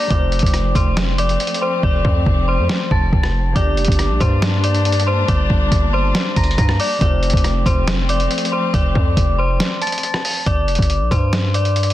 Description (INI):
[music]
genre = hip hop, trap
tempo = 139 BPM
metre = 4/4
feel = half-time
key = G minor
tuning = A4 = 440 Hz
[part]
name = metallic FM bell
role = melody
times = 0.0-11.9 s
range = C5 to Bb6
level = -21 LUFS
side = left 2 dB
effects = chorus, low-pass filter, digital delay
[part]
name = concert harp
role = accompaniment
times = 0.0-10.4 s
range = A3 to Bb4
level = -30 LUFS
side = right 1 dB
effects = low-pass filter
[part]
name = dark symphonic string section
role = sustained chords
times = 0.0-10.4 s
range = F3 to D4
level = -26 LUFS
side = left 2 dB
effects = none
[part]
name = distorted 808-style bass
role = bass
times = 0.1-11.9 s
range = F1 to G2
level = -18 LUFS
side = equal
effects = distortion
[part]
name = lo-fi sampler-style drum kit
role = drums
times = 0.1-11.9 s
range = hi-hat, kick drum, rim click, snare drum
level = -18 LUFS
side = equal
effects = vintage 12-bit sampler grit
[sound]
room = digital ambience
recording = dense, heavily limited modern master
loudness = -14 LUFS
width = side -14 dB against mid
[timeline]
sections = 0.0-10.5 A section; 10.5-11.9 B section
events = hi-hats muted 1.8-3.6; break 9.6-10.5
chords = 0.1 F; 3.6 Gm; 7.0 F; 10.5 G5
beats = | 0.10 0.54 0.97 1.40 | 1.83 2.26 2.69 3.13 | 3.56 3.99 4.42 4.85 | 5.28 5.72 6.15 6.58 | 7.01 7.44 7.87 8.31 | 8.74 9.17 9.60 10.03 | 10.46 10.90 11.33 11.76